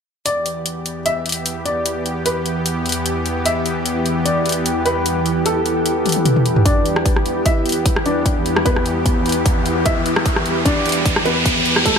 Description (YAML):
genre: heavy wobble dubstep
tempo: 150 BPM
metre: 4/4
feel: swing 54% on 16ths, half-time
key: E minor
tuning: A4 = 439 Hz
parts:
  - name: dark baby grand piano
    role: melody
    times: 0.3-12.0 s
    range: A3 to E5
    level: -22 LUFS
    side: equal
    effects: dub echo
  - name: supersaw pad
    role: sustained chords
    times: 0.3-12.0 s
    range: E2 to G4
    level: -22 LUFS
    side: equal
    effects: sidechain pumping
  - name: dubstep drum kit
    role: drums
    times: 0.3-12.0 s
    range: hi-hat, rim click, toms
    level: -20 LUFS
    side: left 1 dB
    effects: none
  - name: granular cloud pad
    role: texture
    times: 1.9-12.0 s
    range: E4 to G5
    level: -24 LUFS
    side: left 1 dB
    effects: built-in reverb, sidechain pumping
  - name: electronic kick drum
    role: drums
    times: 6.7-11.9 s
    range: none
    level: -18 LUFS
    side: equal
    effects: none
  - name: riser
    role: sound effects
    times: 8.3-12.0 s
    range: none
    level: -22 LUFS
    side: right 1 dB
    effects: none
room: light reverb, digital ambience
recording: high-pass filter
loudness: -16 LUFS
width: side -6 dB against mid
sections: 0.3-6.7 A section; 6.7-12.0 B section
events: fade-in on ambient pad 0.3-6.7; drum fill 6.1-6.7; build-up 6.7-12.0; filter sweep 6.7-12.0; riser 8.3-12.0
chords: 0.3 Em